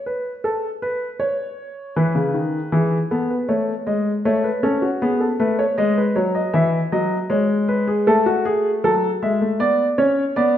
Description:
classical, baroque-style two-part invention for grand piano; 79 BPM; 4/4; straight; A4 = 440 Hz
warm baby grand piano; solo; 0.1-10.6 s; C#3 to E5; -18 LUFS; equal
wet recital hall reverb, RT60 1.4 s; nothing above 7.8 kHz; -18 LUFS; side -10 dB against mid
0.0-10.6 A section
0.0 N.C.; 2.0 E; 3.5 F#m; 5.0 B; 6.5 E; 8.1 A5; 9.6 Bm
0.45 1.21 | 1.97 2.74 3.50 4.26 | 5.02 5.79 6.55 7.31 | 8.07 8.84 9.60 10.37

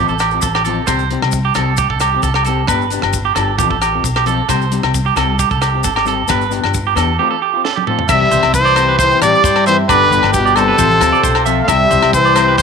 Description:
highlife guitar band; 133 BPM; 4/4; straight; C major; A4 = 441 Hz
electric guitar at the edge of break-up; accompaniment; 0.0-12.5 s; E3 to A4; -23 LUFS; left 13 dB
electric guitar at the edge of break-up; arpeggios; 0.0-12.6 s; G4 to E5; -17 LUFS; right 12 dB; spring reverb, slapback echo
upright bass; bass; 0.0-12.6 s; G1 to G2; -19 LUFS; equal
maracas; percussion; 0.1-12.6 s; -27 LUFS; left 15 dB
tight funk drum kit; drums; 0.2-12.6 s; crash cymbal, hi-hat, kick drum, rim click, snare drum, toms; -22 LUFS; right 4 dB
agogo bells; percussion; 0.2-12.5 s; -22 LUFS; left 14 dB
bright trumpet; melody; 8.1-12.6 s; G4 to F5; -13 LUFS; left 1 dB
warm trombone; second line; 8.1-12.6 s; B2 to A3; -20 LUFS; left 14 dB
accordion; sustained chords; 8.1-12.6 s; B3 to A4; -24 LUFS; right 1 dB; stereo widening
light reverb, studio ambience; 1960s-style stereo with parts hard left and right; -11 LUFS; side -6 dB against mid
0.0-8.1 A section; 8.1-12.6 B section
drum fill 7.6-8.1
0.0 F/A; 0.9 C; 2.7 G; 3.6 F/A; 4.5 C; 6.3 G; 7.2 F/A; 8.1 C; 9.9 G; 10.8 F/A; 11.7 C
0.43 | 0.88 1.33 1.78 2.23 | 2.68 3.13 3.58 4.04 | 4.49 4.94 5.39 5.84 | 6.29 6.74 7.19 7.64 | 8.09 8.54 8.99 9.44 | 9.89 10.34 10.79 11.24 | 11.69 12.13 12.58

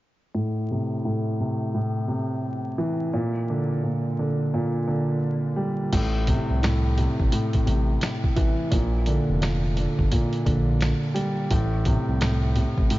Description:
hip hop, boom-bap hip-hop; 86 BPM; 4/4; swing 61% on 16ths; A phrygian; A4 = 439 Hz
dark grand piano; accompaniment; 0.3-13.0 s; A2 to G3; -24 LUFS; equal; cassette tape, low-pass filter
smooth synth bass; bass; 5.9-12.9 s; F1 to C2; -24 LUFS; equal
boom bap sampler-style drum kit; drums; 5.9-13.0 s; crash cymbal, hi-hat, kick drum, snare drum; -26 LUFS; equal
light reverb; vinyl crackle, nothing above 7.5 kHz; -22 LUFS; side -17 dB against mid
0.3-5.9 A section; 5.9-13.0 B section
filter sweep on grand piano 0.3-5.9
0.3 Am; 3.1 Bb6; 5.9 Am; 8.7 Bb6; 11.5 Am
| 0.35 1.05 1.75 2.44 | 3.14 3.84 4.54 5.23 | 5.93 6.63 7.33 8.02 | 8.72 9.42 10.12 10.81 | 11.51 12.21 12.91

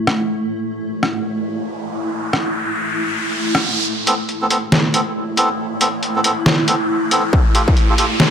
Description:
deep dubstep; 138 BPM; 4/4; swing 60% on 16ths, half-time; A minor; A4 = 439 Hz
granular cloud pad; sustained chords; 0.0-8.3 s; A3 to E4; -22 LUFS; equal; built-in reverb, vintage 12-bit sampler grit
trip hop sampler-style drum kit; drums; 0.1-8.3 s; hi-hat, rim click, snare drum; -17 LUFS; equal; overdrive
riser; sound effects; 1.2-8.3 s; -24 LUFS; equal
melodica; stabs; 4.1-8.1 s; B3 to A4; -19 LUFS; right 1 dB; dub echo
electronic kick drum; drums; 7.3-7.7 s; -14 LUFS; equal; distortion
light reverb; dry, gritty hardware recording; -15 LUFS; side -8 dB against mid
0.0-3.9 A section; 3.9-8.3 B section
riser 1.2-3.9, 3.9-8.3; build-up 3.9-8.3
0.0 A5; 3.9 Amadd9; 7.3 Fadd9
| 0.38 0.81 1.25 1.68 | 2.12 2.55 2.98 3.42 | 3.85 4.29 4.72 5.16 | 5.59 6.03 6.46 6.90 | 7.33 7.77 8.20

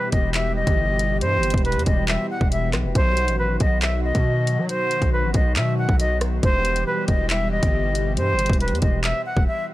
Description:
hip hop, drill; 138 BPM; 4/4; half-time; E harmonic minor; A4 = 438 Hz
reedy silver concert flute; melody; 0.0-9.7 s; B4 to F#5; -24 LUFS; left 1 dB; digital delay
warm analog pad; sustained chords; 0.0-9.7 s; B2 to G4; -28 LUFS; equal; chorus
distorted 808-style bass; bass; 0.1-9.5 s; E1 to F#3; -23 LUFS; equal; distortion
drill drum kit; drums; 0.1-9.5 s; handclaps, hi-hat, kick drum, rim click; -22 LUFS; equal
little or no reverb; -18 LUFS; side -16 dB against mid
0.0-9.7 A section
break 9.5
0.0 Em; 3.0 B; 6.4 Em
0.34 0.78 | 1.21 1.65 2.08 2.52 | 2.95 3.39 3.82 4.26 | 4.69 5.13 5.56 6.00 | 6.43 6.87 7.30 7.74 | 8.17 8.61 9.04 9.47

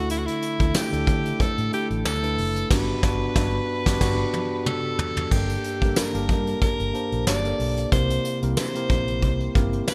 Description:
1980s-style pop; 92 BPM; 4/4; swing 55% on 16ths; G dorian from 5.3 s; A4 = 440 Hz
bright alto saxophone; melody; 0.0-9.9 s; E4 to D5; -31 LUFS; equal; delay
mellow tine electric piano; accompaniment; 0.0-9.9 s; G2 to A5; -30 LUFS; equal
vintage muted fingered electric bass; bass; 0.0-9.8 s; F#1 to D3; -30 LUFS; equal
soft brush drum kit; drums; 0.1-9.9 s; crash cymbal, hi-hat, kick drum, snare drum, tambourine, toms; -27 LUFS; equal
light reverb, studio ambience; bright 1980s-style digital production; -24 LUFS; mono
0.0-5.3 A section; 5.3-9.9 A section
band accent 2.7-5.3; drum fill 4.0-5.3; tine electric piano fill 4.3-5.3
0.0 Dsus2; 2.7 Gmaj7; 5.3 Gmadd9; 7.9 C7
| 0.10 0.75 1.40 2.05 | 2.71 3.36 4.01 4.66 | 5.31 5.97 6.62 7.27 | 7.92 8.57 9.23 9.88

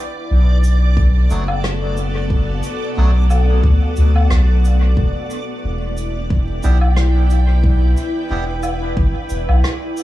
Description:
ambient dub; 90 BPM; 4/4; swing 54% on 16ths; E minor; A4 = 441 Hz
granular cloud pad; sustained chords; 0.0-10.0 s; B3 to G5; -24 LUFS; equal; built-in reverb
backwards swelling texture; texture; 0.0-10.0 s; D5; -34 LUFS; right 3 dB; built-in reverb
soft dub sub bass; bass; 0.3-9.6 s; E1 to D2; -14 LUFS; equal; tube saturation
cabasa, woodblock and rim click; drums; 0.6-10.0 s; -27 LUFS; left 1 dB; dub echo
electronic kick drum; drums; 1.0-9.1 s; -18 LUFS; equal
melodica; stabs; 1.3-8.4 s; F#3 to G4; -31 LUFS; right 3 dB; dub echo
small room reverb; echo-heavy mix, vinyl crackle, studio reverb; -14 LUFS; side -15 dB against mid
0.0-10.0 A section
0.0 Bm7; 5.0 Em7
0.30 0.97 1.63 | 2.30 2.97 3.63 4.30 | 4.97 5.63 6.30 6.97 | 7.63 8.30 8.97 9.63

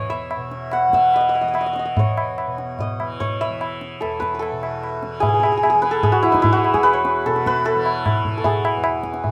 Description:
indian classical, Hindustani; 148 BPM; 4/4; straight; E raga bilaval; A4 = 440 Hz
santur; melody; 0.0-9.3 s; D#4 to F#5; -21 LUFS; equal
tanpura; drone; 0.0-9.3 s; E2 to E3; -33 LUFS; equal
tabla; percussion; 0.1-9.3 s; -26 LUFS; equal
moderate small room reverb, RT60 0.6 s; -20 LUFS; mono
0.0-5.2 A section; 5.2-9.3 B section
speeding up 0.0-9.3
| 0.30 0.72 1.13 1.55 | 1.96 2.38 2.79 3.20 | 3.61 4.02 4.43 4.83 | 5.24 5.64 6.05 6.45 | 6.85 7.25 7.65 8.05 | 8.44 8.84 9.23

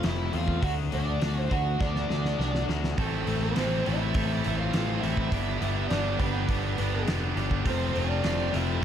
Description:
classic rock; 102 BPM; 4/4; straight; A minor; A4 = 438 Hz
octave-fuzz lead guitar; melody; 0.0-8.8 s; A3 to F#4; -32 LUFS; right 3 dB; distortion, tape echo
overdriven electric guitar; riff; 0.0-8.8 s; F2 to F#4; -32 LUFS; left 8 dB; spring reverb
growling picked electric bass; bass; 0.0-8.8 s; F1 to E2; -30 LUFS; right 1 dB; overdrive
big rock drum kit; drums; 0.0-8.7 s; hi-hat, kick drum, snare drum; -32 LUFS; equal
tight distorted guitar; riff; 3.0-8.8 s; F2 to A4; -33 LUFS; right 10 dB; distortion
light reverb; -25 LUFS; side -9 dB against mid
0.0-8.8 A section
drum fill 1.8-3.0
0.0 F; 0.6 D; 3.0 Am; 5.3 G; 7.7 F
0.04 | 0.63 1.22 1.80 2.39 | 2.98 3.56 4.15 4.74 | 5.32 5.91 6.49 7.08 | 7.66 8.25 8.83

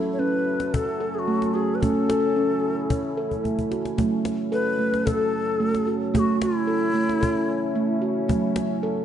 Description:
world meditative, meditative tuned percussion; 111 BPM; 4/4; straight; A4 = 442 Hz
deep dark ambient pad; sustained chords; 0.0-9.0 s; F#3 to A4; -30 LUFS; left 3 dB; chorus, built-in reverb
steel tongue drum; arpeggios; 0.0-9.0 s; F#3 to A4; -24 LUFS; right 3 dB
low Native American-style wooden flute; melody; 0.1-8.0 s; E4 to C#5; -26 LUFS; left 2 dB
cajon; percussion; 0.6-9.0 s; -28 LUFS; left 2 dB
moderate lush hall reverb, RT60 1.9 s, small room ambience; nothing above 10.7 kHz; -21 LUFS; side -9 dB against mid
0.0-4.0 A section; 4.0-9.0 B section
drum fill 3.3-4.0
0.0 F#m; 1.8 A; 4.0 F#m; 6.1 A; 8.3 F#m
0.19 0.74 1.28 | 1.82 2.36 2.90 3.44 | 3.98 4.52 5.06 5.60 | 6.14 6.68 7.22 7.76 | 8.29 8.83

